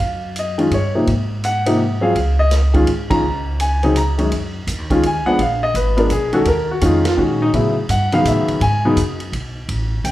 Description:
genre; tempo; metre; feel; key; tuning
jazz piano trio; 167 BPM; 3/4; swing 64% on 8ths; Db major; A4 = 440 Hz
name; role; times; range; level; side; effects
warm baby grand piano; melody; 0.0-10.1 s; Gb2 to Bb5; -16 LUFS; left 1 dB; none
upright bass; bass; 0.0-10.1 s; G#1 to A#2; -20 LUFS; equal; none
vintage drum kit; drums; 0.0-10.1 s; hi-hat, kick drum, ride cymbal, snare drum; -27 LUFS; right 2 dB; none
room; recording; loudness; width
moderate large studio reverb, RT60 1.1 s; heard from further back in the room; -15 LUFS; side -15 dB against mid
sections
0.0-4.3 A section; 4.3-10.1 B section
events
band accent 3.1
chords
0.0 Gbmaj7(no3); 1.1 Ab7; 2.2 Dbadd9; 4.3 F#sus2; 5.4 A#7(no3); 6.5 D#m11; 7.5 A13; 8.6 G#m7

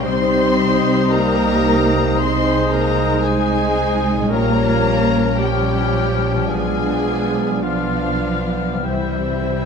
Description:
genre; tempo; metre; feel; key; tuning
classical; 47-57 BPM; 4/4; rubato; unclear; A4 = 439 Hz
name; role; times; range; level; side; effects
rich chamber violin section; melody; 0.0-9.7 s; E5 to C6; -26 LUFS; left 5 dB; none
mellow cor anglais; second line; 0.0-9.7 s; E4 to C5; -26 LUFS; right 2 dB; none
rich chamber violin section; second line; 0.0-9.7 s; E4 to C5; -28 LUFS; left 4 dB; none
small flute group; second line; 0.0-9.7 s; Eb6 to G6; -28 LUFS; left 7 dB; none
warm clarinet; second line; 0.0-9.7 s; C5 to D5; -27 LUFS; left 1 dB; none
rich chamber viola section; accompaniment; 0.0-9.7 s; F3 to Eb4; -26 LUFS; right 2 dB; none
warm bassoon; accompaniment; 0.0-9.7 s; G3 to C4; -27 LUFS; right 1 dB; none
mellow French horn section; sustained chords; 0.0-9.7 s; F3 to Eb4; -25 LUFS; left 2 dB; none
concert harp; arpeggios; 0.0-9.7 s; Bb2 to D5; -26 LUFS; left 10 dB; none
dark chamber double bass section; bass; 0.0-9.7 s; Bb1 to C2; -23 LUFS; right 4 dB; none
rich chamber cello section; bass; 0.0-9.7 s; E3 to C4; -23 LUFS; right 2 dB; none
timpani; percussion; 8.9-9.6 s; C3; -31 LUFS; left 1 dB; none
room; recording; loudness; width
wet recital hall reverb, RT60 1.4 s; none; -15 LUFS; side -6 dB against mid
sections
0.0-9.7 A section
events
timpani fill 8.9-9.7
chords
0.0 Cm; 2.2 Ab/C; 4.3 Gm7b5/Bb; 6.5 Bdim7; 8.9 C

